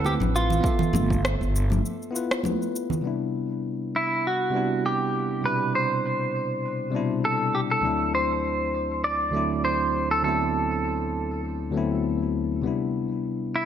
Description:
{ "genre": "sunset chillout", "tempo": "100 BPM", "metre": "4/4", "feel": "swing 56% on 16ths", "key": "C lydian", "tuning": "A4 = 440 Hz", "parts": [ { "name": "clean electric guitar", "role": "melody", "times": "0.0-13.7 s", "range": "E4 to D5", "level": "-25 LUFS", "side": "equal", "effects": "digital delay" }, { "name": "barky tine electric piano", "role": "accompaniment", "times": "0.0-13.7 s", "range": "D2 to F#5", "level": "-27 LUFS", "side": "moving between left 6 dB and right 7 dB", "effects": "auto-pan, digital delay" }, { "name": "upright bass", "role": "bass", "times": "0.0-1.8 s", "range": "G1 to D2", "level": "-24 LUFS", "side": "equal", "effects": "none" }, { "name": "congas", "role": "percussion", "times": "0.0-3.0 s", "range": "none", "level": "-30 LUFS", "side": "right 4 dB", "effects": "none" }, { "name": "electronic shaker, congas and rim click", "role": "drums", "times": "0.1-3.0 s", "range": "none", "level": "-29 LUFS", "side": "left 3 dB", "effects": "overdrive" }, { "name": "electronic kick drum", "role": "drums", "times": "0.6-1.2 s", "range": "none", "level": "-27 LUFS", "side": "equal", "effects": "overdrive" } ], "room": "moderate plate reverb, RT60 2.4 s", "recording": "none", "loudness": "-23 LUFS", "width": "side -9 dB against mid", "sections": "0.0-3.0 A section; 3.0-13.7 B section", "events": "break 1.8-3.0", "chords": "0.0 D13; 0.6 G13; 3.0 Cmaj7; 7.8 D13; 12.6 Cmaj7" }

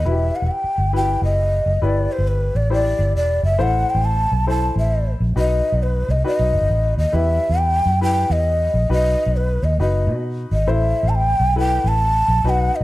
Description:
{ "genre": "uptempo 1960s-style soul", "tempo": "136 BPM", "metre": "4/4", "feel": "swing 64% on 8ths", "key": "E harmonic minor", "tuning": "A4 = 439 Hz", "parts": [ { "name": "breathy mellow shakuhachi", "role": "melody", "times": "0.0-12.8 s", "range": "B4 to A5", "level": "-20 LUFS", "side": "equal", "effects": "none" }, { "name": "vintage muted fingered electric bass", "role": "bass", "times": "0.0-12.8 s", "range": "E1 to B2", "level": "-19 LUFS", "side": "equal", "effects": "tube saturation" }, { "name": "warm upright piano", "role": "accompaniment", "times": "0.1-12.8 s", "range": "D#4 to D5", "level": "-26 LUFS", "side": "left 4 dB", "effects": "none" } ], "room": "light reverb, small room ambience", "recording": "dark, warm production", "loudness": "-16 LUFS", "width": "side -17 dB against mid", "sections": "0.1-12.8 A section", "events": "none", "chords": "0.1 Em; 1.8 G6; 3.6 Am; 5.4 B; 7.1 Em; 8.9 B; 10.7 Am" }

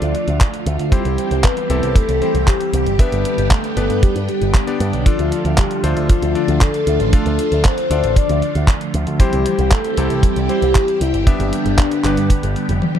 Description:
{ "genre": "italo disco", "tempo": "116 BPM", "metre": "4/4", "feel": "straight", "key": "D dorian", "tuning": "A4 = 440 Hz", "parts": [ { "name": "soft octave-layered synth lead", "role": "melody", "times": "0.0-12.8 s", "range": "D4 to D5", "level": "-20 LUFS", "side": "left 2 dB", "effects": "chorus, phaser, ping-pong delay" }, { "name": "phased string machine", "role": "sustained chords", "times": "0.0-13.0 s", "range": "D3 to G4", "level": "-23 LUFS", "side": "right 1 dB", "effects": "ensemble chorus, phaser" }, { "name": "bright electric grand piano", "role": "stabs", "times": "0.0-12.8 s", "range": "B3 to F5", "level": "-26 LUFS", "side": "left 4 dB", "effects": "ping-pong delay" }, { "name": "picked electric bass with an envelope filter", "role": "bass", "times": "0.0-12.8 s", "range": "F1 to G2", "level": "-19 LUFS", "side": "equal", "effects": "none" }, { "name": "clean 12-bit digital drum machine", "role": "drums", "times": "0.0-13.0 s", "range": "handclaps, hi-hat, toms", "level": "-24 LUFS", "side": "equal", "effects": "overdrive" }, { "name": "kick drum", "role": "drums", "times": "0.4-12.4 s", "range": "none", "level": "-13 LUFS", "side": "equal", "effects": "none" } ], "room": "light reverb", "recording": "dark, warm production", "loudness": "-14 LUFS", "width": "side -9 dB against mid", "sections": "0.0-13.0 A section", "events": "drum fill 12.8", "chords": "0.0 Dm; 0.9 C; 3.0 G; 5.1 Dm; 9.2 C; 11.3 G" }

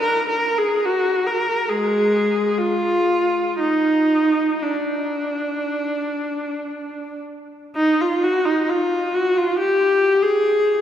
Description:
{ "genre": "classical, free, expressive piece for unaccompanied viola", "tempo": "44-76 BPM", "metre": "4/4", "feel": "rubato", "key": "unclear", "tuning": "A4 = 440 Hz", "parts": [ { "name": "clear viola", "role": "solo", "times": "0.0-10.8 s", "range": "Ab3 to Bb4", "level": "-18 LUFS", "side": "equal", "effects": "none" } ], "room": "wet cathedral reverb, RT60 4.5 s", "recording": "heard from further back in the room", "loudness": "-17 LUFS", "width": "side -10 dB against mid", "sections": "0.0-7.8 A section; 7.8-10.8 B section", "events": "none", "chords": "none" }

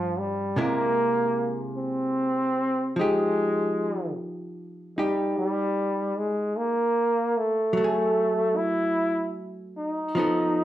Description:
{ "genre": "jazz ballad", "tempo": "50 BPM", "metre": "4/4", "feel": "swing 67% on 8ths", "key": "unclear", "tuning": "A4 = 443 Hz", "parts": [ { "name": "bright trombone", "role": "melody", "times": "0.0-10.6 s", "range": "F3 to E4", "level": "-24 LUFS", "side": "equal", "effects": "none" }, { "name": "archtop guitar, miked and amplified", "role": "accompaniment", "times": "0.0-10.6 s", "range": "G2 to A4", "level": "-28 LUFS", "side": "equal", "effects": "none" } ], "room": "moderate large studio reverb, RT60 0.8 s", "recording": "dark, warm production", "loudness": "-23 LUFS", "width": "side -13 dB against mid", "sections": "0.0-10.6 A section", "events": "none", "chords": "0.0 Gm7b5; 0.6 C7b13; 3.0 Fm9; 7.8 F#madd9" }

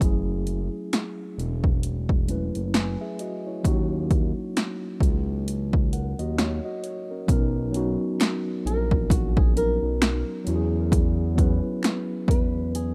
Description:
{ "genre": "lo-fi hip hop", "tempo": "66 BPM", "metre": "4/4", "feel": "swing 59% on 16ths", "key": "B major", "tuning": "A4 = 440 Hz", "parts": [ { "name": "mellow tine electric piano", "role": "accompaniment", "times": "0.0-12.9 s", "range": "F#3 to G#5", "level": "-32 LUFS", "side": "equal", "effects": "none" }, { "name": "smooth synth bass", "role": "bass", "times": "0.0-12.9 s", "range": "E1 to E2", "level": "-29 LUFS", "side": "equal", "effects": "none" }, { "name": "punchy analog drum machine", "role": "drums", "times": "0.0-12.9 s", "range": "finger snaps, hi-hat, kick drum, snare drum", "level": "-25 LUFS", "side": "equal", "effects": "overdrive" }, { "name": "finger snap", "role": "percussion", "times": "8.2-12.1 s", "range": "none", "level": "-42 LUFS", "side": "equal", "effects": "none" }, { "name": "flamenco guitar", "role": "melody", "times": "8.7-12.9 s", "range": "F#4 to B4", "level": "-32 LUFS", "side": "equal", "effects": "analog delay" } ], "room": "digital ambience", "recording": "rough home demo mix", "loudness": "-25 LUFS", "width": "mono", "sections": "0.0-7.3 A section; 7.3-12.9 B section", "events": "none", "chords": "0.0 F#m9; 3.6 D#m7; 7.3 Bmaj9; 10.5 E69" }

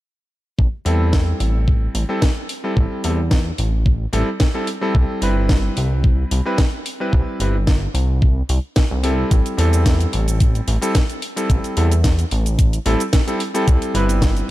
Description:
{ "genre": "nu-disco, nu disco", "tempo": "110 BPM", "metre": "4/4", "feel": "swing 53% on 16ths", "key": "A minor", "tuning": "A4 = 440 Hz", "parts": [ { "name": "chorused synth bass", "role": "bass", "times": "0.6-14.4 s", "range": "G1 to E2", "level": "-18 LUFS", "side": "equal", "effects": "none" }, { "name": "electronic kick drum", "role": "drums", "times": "0.6-14.3 s", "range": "none", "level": "-16 LUFS", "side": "equal", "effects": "none" }, { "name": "bright electric grand piano", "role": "accompaniment", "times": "0.8-14.5 s", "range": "G3 to B4", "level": "-23 LUFS", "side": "equal", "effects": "sidechain pumping, digital delay" }, { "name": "house drum kit", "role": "drums", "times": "0.9-14.5 s", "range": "hi-hat, shaker, snare drum", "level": "-26 LUFS", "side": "equal", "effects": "none" } ], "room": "little or no reverb", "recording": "dark, warm production", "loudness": "-16 LUFS", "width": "side -16 dB against mid", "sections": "0.6-14.5 A section", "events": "none", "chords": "0.6 Am7; 4.7 Cmaj7; 9.3 Am7; 13.4 Cmaj7" }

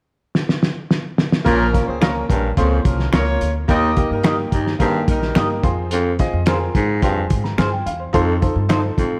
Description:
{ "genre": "uptempo 1960s-style soul", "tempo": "108 BPM", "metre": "4/4", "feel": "straight", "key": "unclear", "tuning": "A4 = 441 Hz", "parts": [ { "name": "cloth-damped thuddy drum kit", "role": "drums", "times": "0.3-9.1 s", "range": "hi-hat, kick drum, snare drum", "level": "-22 LUFS", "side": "equal", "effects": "none" }, { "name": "clear grand piano", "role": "accompaniment", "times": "1.4-9.1 s", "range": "Bb3 to Bb5", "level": "-25 LUFS", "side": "equal", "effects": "none" }, { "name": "warm horn section", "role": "second line", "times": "1.5-5.6 s", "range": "F3 to Eb5", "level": "-27 LUFS", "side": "equal", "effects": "none" }, { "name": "raspy baritone saxophone", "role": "riff", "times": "1.5-9.2 s", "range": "Eb2 to Bb2", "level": "-25 LUFS", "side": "equal", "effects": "none" }, { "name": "upright bass", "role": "bass", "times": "1.5-9.2 s", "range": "Bb1 to Eb3", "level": "-25 LUFS", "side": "equal", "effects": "none" }, { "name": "electric guitar through a small old amp", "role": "stabs", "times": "2.0-8.8 s", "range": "Eb4 to Eb5", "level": "-29 LUFS", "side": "equal", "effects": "warbly pitch drift" }, { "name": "finger snap", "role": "percussion", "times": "2.0-8.8 s", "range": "none", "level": "-34 LUFS", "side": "equal", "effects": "none" } ], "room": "light reverb", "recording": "none", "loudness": "-18 LUFS", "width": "mono", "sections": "0.0-1.5 A section; 1.5-9.2 B section", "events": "drum fill 0.3-1.5", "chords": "0.0 N.C.; 1.5 Bbm; 3.7 Eb; 5.6 Fm; 8.1 F7" }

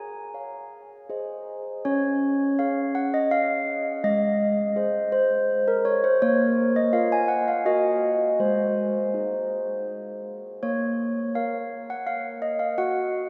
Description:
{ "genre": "classical, tune for handbells", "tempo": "82 BPM", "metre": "3/4", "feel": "straight", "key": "Db major", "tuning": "A4 = 440 Hz", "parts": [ { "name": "handbells", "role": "solo", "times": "0.0-13.3 s", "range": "Ab3 to Ab5", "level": "-25 LUFS", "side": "equal", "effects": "none" } ], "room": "wet cathedral reverb, RT60 5.4 s", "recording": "heard from further back in the room", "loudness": "-24 LUFS", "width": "mono", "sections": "0.0-1.9 A section; 1.9-13.3 B section", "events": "none", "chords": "0.0 Db/Ab; 1.1 Ab; 1.9 Db; 4.0 Ab; 6.2 Bb5; 7.7 Ebm/Gb; 8.4 Ab; 10.6 Bbm; 12.8 N.C." }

